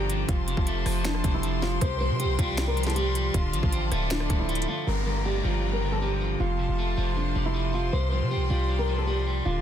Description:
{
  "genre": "hip hop, trap",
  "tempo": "157 BPM",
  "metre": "4/4",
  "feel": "half-time",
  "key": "G minor",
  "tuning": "A4 = 440 Hz",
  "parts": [
    { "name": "nylon-string guitar", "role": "melody", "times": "0.0-9.6 s", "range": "D4 to C5", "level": "-32 LUFS", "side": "right 1 dB", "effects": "ping-pong delay" },
    { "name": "electric guitar at the edge of break-up", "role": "accompaniment", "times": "0.0-9.6 s", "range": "F2 to C4", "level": "-30 LUFS", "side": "left 1 dB", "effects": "warbly pitch drift" },
    { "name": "warm chamber string section", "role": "sustained chords", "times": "0.0-9.6 s", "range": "F4 to C6", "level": "-35 LUFS", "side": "left 4 dB", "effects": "none" },
    { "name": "hard-hitting 808-style bass", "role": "bass", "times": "0.0-9.6 s", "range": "D1 to C3", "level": "-28 LUFS", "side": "equal", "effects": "none" },
    { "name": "trap drum kit", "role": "drums", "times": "0.1-4.7 s", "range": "finger snaps, hi-hat, kick drum, rim click, snare drum", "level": "-28 LUFS", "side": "equal", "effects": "none" },
    { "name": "downlifter and swell", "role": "sound effects", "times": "4.9-9.6 s", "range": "none", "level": "-38 LUFS", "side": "right 1 dB", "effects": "none" }
  ],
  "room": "little or no reverb",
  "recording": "dense, heavily limited modern master",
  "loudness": "-24 LUFS",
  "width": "side -10 dB against mid",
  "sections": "0.0-4.9 A section; 4.9-9.6 B section",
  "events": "none",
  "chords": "0.3 F; 1.8 Csus4; 3.3 Dm7; 4.9 Gm7; 6.4 F; 7.9 Csus4"
}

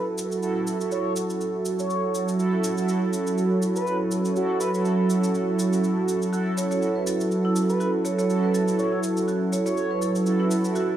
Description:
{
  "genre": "afro house",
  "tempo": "122 BPM",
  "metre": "4/4",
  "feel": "swing 56% on 16ths",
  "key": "F# minor pentatonic",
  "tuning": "A4 = 441 Hz",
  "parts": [
    { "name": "expressive synth lead", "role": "melody", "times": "0.0-10.2 s", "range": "F#4 to C#5", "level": "-32 LUFS", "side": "right 1 dB", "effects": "chorus, tape echo" },
    { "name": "warm analog pad", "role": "sustained chords", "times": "0.0-11.0 s", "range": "F#3 to C#5", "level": "-24 LUFS", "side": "right 1 dB", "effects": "chorus" },
    { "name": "mellow synth brass", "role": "stabs", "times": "0.0-11.0 s", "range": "E4 to A4", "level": "-27 LUFS", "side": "right 3 dB", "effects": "chorus, tape echo" },
    { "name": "shaker", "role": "drums", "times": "0.2-10.9 s", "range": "none", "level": "-37 LUFS", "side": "equal", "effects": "overdrive" },
    { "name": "marimba with medium hard mallets", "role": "arpeggios", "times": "6.3-10.9 s", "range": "E4 to C#5", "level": "-29 LUFS", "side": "right 2 dB", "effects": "tape echo" }
  ],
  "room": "wet lush hall reverb, RT60 1.8 s",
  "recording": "none",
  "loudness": "-22 LUFS",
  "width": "side -11 dB against mid",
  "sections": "0.0-11.0 A section",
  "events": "filter sweep on analog synth pad 0.0-11.0",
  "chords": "0.0 F#m7"
}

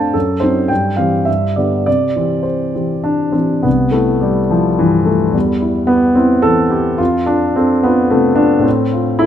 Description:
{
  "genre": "classical, romantic character piece for solo piano",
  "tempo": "98-111 BPM",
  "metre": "3/4",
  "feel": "rubato",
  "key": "C major",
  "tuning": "A4 = 440 Hz",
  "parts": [
    { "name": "warm concert grand piano", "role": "solo", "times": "0.0-9.3 s", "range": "C2 to A5", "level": "-12 LUFS", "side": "equal", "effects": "none" }
  ],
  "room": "moderate scoring stage reverb, RT60 1.9 s",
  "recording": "close, detailed microphones",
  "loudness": "-12 LUFS",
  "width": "side -10 dB against mid",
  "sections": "0.0-3.7 A section; 3.7-9.3 B section",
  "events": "none",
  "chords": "0.1 F#dim7; 0.7 C/G; 1.3 G; 1.9 C; 5.3 Emadd11; 7.0 F; 8.7 F/A"
}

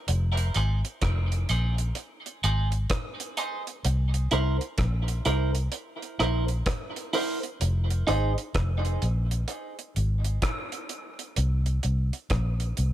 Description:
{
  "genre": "dub reggae",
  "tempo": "64 BPM",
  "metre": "4/4",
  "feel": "swing 63% on 16ths",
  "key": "F minor",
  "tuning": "A4 = 439 Hz",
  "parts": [
    { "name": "vintage muted fingered electric bass", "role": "bass", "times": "0.1-12.9 s", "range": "F1 to C2", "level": "-25 LUFS", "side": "equal", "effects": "none" },
    { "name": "deep reggae drum kit", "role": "drums", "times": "0.1-12.9 s", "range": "hi-hat, kick drum, rim click", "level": "-31 LUFS", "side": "right 1 dB", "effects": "none" },
    { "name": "clean electric guitar", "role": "accompaniment", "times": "0.6-8.3 s", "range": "Eb4 to C5", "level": "-31 LUFS", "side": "right 3 dB", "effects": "high-pass filter, tape echo" }
  ],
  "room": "small room ambience",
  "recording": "none",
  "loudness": "-25 LUFS",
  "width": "side -13 dB against mid",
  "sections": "0.0-12.9 A section",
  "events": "none",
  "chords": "0.1 Fm7; 3.8 C7; 7.6 Fm; 11.4 Bbsus2"
}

